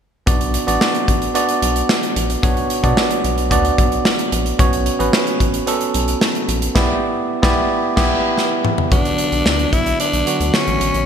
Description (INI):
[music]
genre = 1980s-style pop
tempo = 111 BPM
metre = 4/4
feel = straight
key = B minor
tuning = A4 = 440 Hz
[part]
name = bell-like tine electric piano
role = accompaniment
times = 0.3-11.1 s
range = D3 to D5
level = -19 LUFS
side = right 2 dB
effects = none
[part]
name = rubbery square bass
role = bass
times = 0.3-11.0 s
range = A1 to B2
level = -22 LUFS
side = left 1 dB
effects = none
[part]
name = modern studio drum kit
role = drums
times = 0.3-11.1 s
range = crash cymbal, hi-hat, kick drum, snare drum, toms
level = -18 LUFS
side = equal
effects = gated reverb
[part]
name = raspy tenor saxophone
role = melody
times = 8.9-11.1 s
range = C#4 to E4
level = -18 LUFS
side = left 1 dB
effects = digital delay
[sound]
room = moderate plate reverb, RT60 3.0 s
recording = bright 1980s-style digital production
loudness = -15 LUFS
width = side -8 dB against mid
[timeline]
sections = 0.3-8.9 A section; 8.9-11.1 B section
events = band accent 6.8-8.9; drum fill 8.4-8.9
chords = 0.3 Bm; 4.6 F#sus4; 6.8 Em7/B; 8.9 Bm